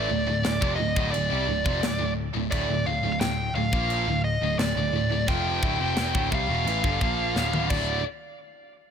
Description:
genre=heavy metal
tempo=87 BPM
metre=4/4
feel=straight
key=D minor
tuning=A4 = 438 Hz
part: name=dark smooth lead guitar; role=melody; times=0.0-8.0 s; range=D5 to G5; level=-28 LUFS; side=equal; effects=overdrive, tape echo
part: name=heavy high-gain guitar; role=riff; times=0.0-8.0 s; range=D2 to Bb3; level=-31 LUFS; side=left 13 dB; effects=distortion
part: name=tight distorted guitar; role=riff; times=0.0-8.0 s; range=D2 to Bb3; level=-32 LUFS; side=right 11 dB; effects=distortion
part: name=tight distorted guitar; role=riff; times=0.0-8.0 s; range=D2 to Bb3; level=-34 LUFS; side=equal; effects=distortion
part: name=picked electric bass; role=bass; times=0.0-8.0 s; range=D1 to C2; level=-30 LUFS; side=left 1 dB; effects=none
part: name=tight metal drum kit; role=drums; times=0.4-7.9 s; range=china cymbal, crash cymbal, kick drum, snare drum, toms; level=-30 LUFS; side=equal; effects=none
room=small room reverb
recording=none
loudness=-23 LUFS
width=side -7 dB against mid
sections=0.0-8.1 A section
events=drum fill 7.4-8.1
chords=0.0 Dm; 7.7 D5; 8.1 N.C.

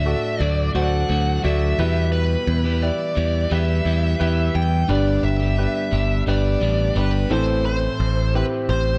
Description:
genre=piano-driven pop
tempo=87 BPM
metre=4/4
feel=straight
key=G major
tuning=A4 = 438 Hz
part: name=bluesy overdriven lead guitar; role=melody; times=0.0-9.0 s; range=B4 to G5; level=-28 LUFS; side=equal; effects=distortion
part: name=warm grand piano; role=accompaniment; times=0.0-9.0 s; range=G2 to D5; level=-28 LUFS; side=equal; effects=none
part: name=electric guitar at the edge of break-up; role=riff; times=0.0-7.7 s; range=E2 to A4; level=-30 LUFS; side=equal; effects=none
part: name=modern bright picked electric bass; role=bass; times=0.0-9.0 s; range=G1 to E2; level=-23 LUFS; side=equal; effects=none
room=light reverb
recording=dark, warm production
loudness=-20 LUFS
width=mono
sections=0.0-9.0 A section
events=none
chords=0.0 D; 1.8 Em; 4.9 G; 7.3 Am

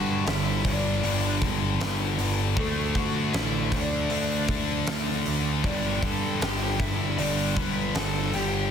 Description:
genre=quiet-loud alternative rock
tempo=78 BPM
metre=4/4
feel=straight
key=unclear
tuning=A4 = 440 Hz
part: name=bluesy overdriven lead guitar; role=melody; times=0.0-8.7 s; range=A3 to B5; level=-32 LUFS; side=left 2 dB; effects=distortion, tape echo
part: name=thick fuzz guitar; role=riff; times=0.0-8.7 s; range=G2 to D4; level=-31 LUFS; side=right 9 dB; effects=distortion
part: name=tight distorted guitar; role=riff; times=0.0-8.7 s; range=G2 to D4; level=-30 LUFS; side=left 14 dB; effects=distortion
part: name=fuzz picked electric bass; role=bass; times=0.0-8.7 s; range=G1 to G2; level=-30 LUFS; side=equal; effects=overdrive
part: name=huge arena drum kit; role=drums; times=0.3-8.5 s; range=hi-hat, kick drum, snare drum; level=-30 LUFS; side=right 1 dB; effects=none
room=little or no reverb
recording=dense, heavily limited modern master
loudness=-23 LUFS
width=side -8 dB against mid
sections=0.0-8.7 A section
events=none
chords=0.0 G5; 2.6 D; 5.6 G

